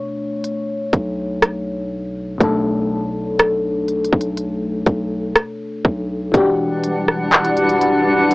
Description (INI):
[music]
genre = contemporary R&B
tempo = 61 BPM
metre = 4/4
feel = straight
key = E minor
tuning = A4 = 440 Hz
[part]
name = mellow FM electric piano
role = accompaniment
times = 0.0-8.3 s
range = B2 to C#5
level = -20 LUFS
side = left 2 dB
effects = chorus, phaser, cassette tape
[part]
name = trap drum kit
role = drums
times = 0.4-8.3 s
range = handclaps, hi-hat, kick drum, rim click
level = -14 LUFS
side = equal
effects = cassette tape
[part]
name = long sustained 808-style bass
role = bass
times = 0.9-8.3 s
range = E1 to B1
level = -26 LUFS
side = equal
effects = none
[part]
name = granular cloud pad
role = sustained chords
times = 6.7-8.3 s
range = E3 to F#5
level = -16 LUFS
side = equal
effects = built-in reverb, cassette tape
[sound]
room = light reverb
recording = home recording on cassette, AM radio sound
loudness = -16 LUFS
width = side -21 dB against mid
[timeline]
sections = 0.0-6.3 A section; 6.3-8.3 B section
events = none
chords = 0.0 Bm9; 6.3 Em9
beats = 0.44 1.42 | 2.40 3.39 4.37 5.36 | 6.34 7.32 8.31